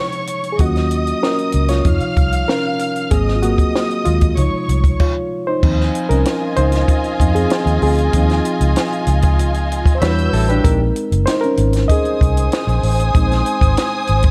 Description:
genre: lush 1970s-style soul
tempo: 96 BPM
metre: 4/4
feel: straight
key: unclear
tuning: A4 = 441 Hz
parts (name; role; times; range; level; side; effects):
- warm studio violin section; second line; 0.0-14.3 s; F4 to G6; -25 LUFS; equal; none
- barky reed electric piano; accompaniment; 0.0-14.3 s; C3 to Eb5; -22 LUFS; equal; none
- compact cocktail drum kit; drums; 0.1-14.3 s; crash cymbal, hi-hat, kick drum, snare drum; -20 LUFS; equal; none
- vintage muted fingered electric bass; bass; 0.6-14.3 s; Gb1 to F2; -19 LUFS; equal; none
- electric guitar through a small old amp; riff; 10.0-10.8 s; D4 to B4; -27 LUFS; equal; none
room: small room ambience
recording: none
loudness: -16 LUFS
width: mono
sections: 0.0-5.6 A section; 5.6-14.3 B section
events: reed electric piano solo 0.0-5.6, 5.6-14.3; stop 5.0-5.6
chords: 0.0 Dbmaj7; 0.6 Ebm7; 1.9 Dbmaj7; 3.1 Ab7; 4.4 Dbmaj7; 5.6 Dbmaj9; 10.0 Em7; 10.6 Bb9sus4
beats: | 0.60 1.23 1.86 2.48 | 3.11 3.74 4.37 5.00 | 5.62 6.25 6.88 7.51 | 8.13 8.76 9.39 10.02 | 10.64 11.27 11.90 12.52 | 13.15 13.77

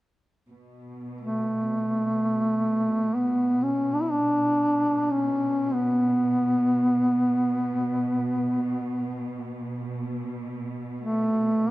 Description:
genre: caucasian folk, Caucasian lament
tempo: free time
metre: none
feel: none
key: B minor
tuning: A4 = 440 Hz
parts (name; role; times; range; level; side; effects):
- warm symphonic cello section; drone; 0.5-11.7 s; B2; -34 LUFS; right 1 dB; none
- dark duduk; melody; 1.2-11.7 s; A3 to E4; -22 LUFS; equal; tape echo
room: moderate recital hall reverb, RT60 1.3 s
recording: close, detailed microphones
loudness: -23 LUFS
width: side -18 dB against mid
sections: 0.5-11.7 A section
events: none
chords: none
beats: free time

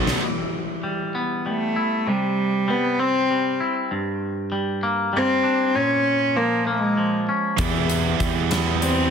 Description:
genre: quiet-loud alternative rock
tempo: 65 BPM (dotted quarters)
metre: 6/8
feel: straight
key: E minor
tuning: A4 = 441 Hz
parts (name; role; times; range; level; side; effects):
- overdriven electric guitar; riff; 0.0-0.2, 7.6-9.1 s; B2 to E4; -24 LUFS; right 13 dB; none
- fuzz picked electric bass; bass; 0.0-0.1, 7.6-9.1 s; B1 to E2; -24 LUFS; left 1 dB; overdrive
- big rock drum kit; drums; 0.1-0.2, 7.6-9.0 s; hi-hat, kick drum, snare drum; -27 LUFS; equal; soft clipping on kick
- twangy electric guitar; arpeggios; 0.2-9.1 s; G2 to E4; -25 LUFS; left 1 dB; none
- warm cello; melody; 1.5-9.1 s; G3 to C#4; -21 LUFS; equal; none
room: light reverb, small room ambience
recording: dense, heavily limited modern master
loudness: -20 LUFS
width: side -7 dB against mid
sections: 0.2-9.1 A section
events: drum fill 0.0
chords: 0.2 Em; 2.1 C; 3.9 Gm; 5.8 A#m; 7.6 Em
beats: | 0.23 1.15 | 2.07 2.99 | 3.91 4.83 | 5.75 6.67 | 7.59 8.51

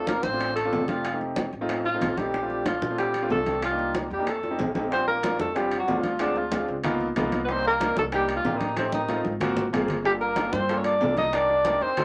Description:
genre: Afro-Cuban jazz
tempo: 187 BPM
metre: 4/4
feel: straight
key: Bb major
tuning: A4 = 441 Hz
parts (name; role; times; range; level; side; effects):
- breathy alto saxophone; melody; 0.0-12.0 s; C4 to Eb5; -28 LUFS; equal; none
- trombone with straight mute; second line; 0.0-12.0 s; C3 to Eb4; -36 LUFS; equal; none
- clear concert grand piano; accompaniment; 0.0-12.0 s; G3 to Bb4; -32 LUFS; equal; none
- upright bass; bass; 0.0-12.0 s; F1 to Bb2; -39 LUFS; equal; none
- bongos; percussion; 0.1-12.0 s; none; -35 LUFS; equal; none
- congas; percussion; 0.1-12.0 s; none; -36 LUFS; equal; none
- timbales; percussion; 0.1-12.0 s; none; -39 LUFS; equal; none
room: wet small room ambience, RT60 0.5 s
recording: none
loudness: -26 LUFS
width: mono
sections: 0.0-4.9 A section; 4.9-12.0 B section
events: drum fill 4.4-4.9, 8.8-10.0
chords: 0.0 Dm7; 1.0 F7; 2.3 Bbmaj7; 3.6 Cm7; 4.3 F9; 4.9 Bb69; 6.2 Dm7b5; 6.8 Db13; 7.5 Cm9; 8.8 Am7b5; 9.4 Ab13; 10.0 Gm9; 11.3 Cm7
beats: 0.08 0.41 0.73 | 1.05 1.37 1.69 2.02 | 2.34 2.66 2.98 3.30 | 3.62 3.95 4.27 4.59 | 4.91 5.23 5.55 5.88 | 6.20 6.52 6.84 7.16 | 7.48 7.80 8.12 8.44 | 8.77 9.09 9.41 9.73 | 10.05 10.37 10.69 11.01 | 11.33 11.65 11.97

